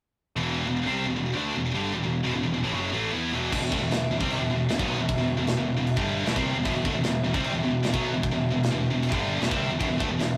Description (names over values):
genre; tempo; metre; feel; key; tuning
heavy metal; 153 BPM; 4/4; straight; E minor; A4 = 440 Hz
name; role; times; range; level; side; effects
heavy high-gain guitar; riff; 0.4-10.4 s; E2 to E4; -33 LUFS; equal; distortion
scooped high-gain guitar; riff; 0.4-10.3 s; E2 to E4; -30 LUFS; equal; distortion
fuzz picked electric bass; bass; 0.4-10.4 s; E1 to E2; -33 LUFS; equal; overdrive
tight metal drum kit; drums; 3.5-10.3 s; crash cymbal, kick drum, snare drum; -32 LUFS; equal; none
room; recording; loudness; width
moderate studio ambience, RT60 0.5 s; rough rehearsal-room recording, warm saturation; -26 LUFS; mono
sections
0.4-3.5 A section; 3.5-10.4 B section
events
none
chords
0.4 Em